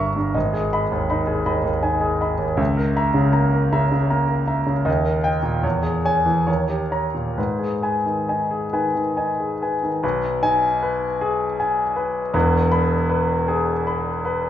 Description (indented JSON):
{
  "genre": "classical, romantic character piece for solo piano",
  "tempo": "65-81 BPM",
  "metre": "3/4",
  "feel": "rubato",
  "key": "G# minor",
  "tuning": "A4 = 443 Hz",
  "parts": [
    { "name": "clear concert grand piano", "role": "solo", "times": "0.0-14.5 s", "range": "E1 to Db6", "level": "-18 LUFS", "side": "equal", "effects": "none" }
  ],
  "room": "wet recital hall reverb, RT60 1.4 s",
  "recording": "recorded in a church or concert hall, nothing above 7.6 kHz",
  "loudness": "-18 LUFS",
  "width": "side -11 dB against mid",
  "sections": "0.0-10.0 A section; 10.0-14.5 B section",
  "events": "none",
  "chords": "0.4 G#m; 2.6 A#dim/C#; 4.9 D#; 5.6 C#m/E; 6.5 D#7; 7.4 G#m; 10.0 G#m/B; 12.3 E",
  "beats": "| 0.35 1.09 1.83 | 2.59 3.35 4.11 | 4.87 5.64 6.47 | 7.37 8.28 9.17 | 10.03 10.82 11.59 | 12.35 13.10 13.87"
}